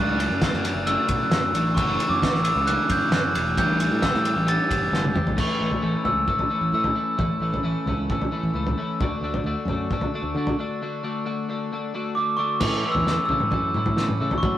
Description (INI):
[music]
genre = indie rock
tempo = 133 BPM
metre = 4/4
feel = straight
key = A mixolydian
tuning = A4 = 440 Hz
[part]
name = glockenspiel with rubber mallets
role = melody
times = 0.0-8.7, 12.2-14.6 s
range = C#6 to A6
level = -25 LUFS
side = right 1 dB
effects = none
[part]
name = twelve-string electric guitar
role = riff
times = 0.0-14.6 s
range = F#2 to G4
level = -28 LUFS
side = left 2 dB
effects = spring reverb
[part]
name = growling fingered electric bass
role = bass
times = 0.0-14.6 s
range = E1 to F#3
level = -27 LUFS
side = equal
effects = overdrive
[part]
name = cloth-damped thuddy drum kit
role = drums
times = 0.2-14.5 s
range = crash cymbal, kick drum, ride cymbal, snare drum, toms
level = -25 LUFS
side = equal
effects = none
[sound]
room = moderate studio reverb, RT60 0.5 s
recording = rough rehearsal-room recording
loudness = -21 LUFS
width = side -12 dB against mid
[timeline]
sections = 0.0-5.4 A section; 5.4-12.6 B section; 12.6-14.6 C section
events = drum fill 4.9-5.4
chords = 0.0 Dmaj7; 1.8 F#m7; 3.6 A7; 5.4 A; 9.0 D; 12.6 A